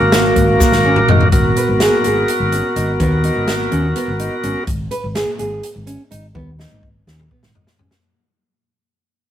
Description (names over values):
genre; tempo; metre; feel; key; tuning
progressive instrumental, band music in an uneven meter; 250 BPM (eighths); 7/8; straight; G# minor; A4 = 440 Hz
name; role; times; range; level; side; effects
bright tonewheel organ; accompaniment; 0.0-4.6 s; A#3 to A#4; -16 LUFS; equal; slow rotary speaker
nylon-string guitar; arpeggios; 0.0-7.9 s; A#3 to B4; -22 LUFS; right 2 dB; none
hollow-body short-scale fingered electric bass; bass; 0.0-7.9 s; G#1 to D#2; -20 LUFS; equal; none
swinging big-band drum kit; drums; 0.1-8.0 s; hi-hat, kick drum, snare drum, toms; -18 LUFS; equal; none
tube shaker; percussion; 0.6-0.8 s; none; -25 LUFS; left 5 dB; none
room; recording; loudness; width
light reverb; rough rehearsal-room recording; -13 LUFS; side -10 dB against mid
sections
0.0-1.3 A section; 1.3-8.0 B section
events
drum fill 0.6-1.3, 6.4-8.0; fade-out 1.3-8.0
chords
0.0 F#add9/G#; 1.3 G#m7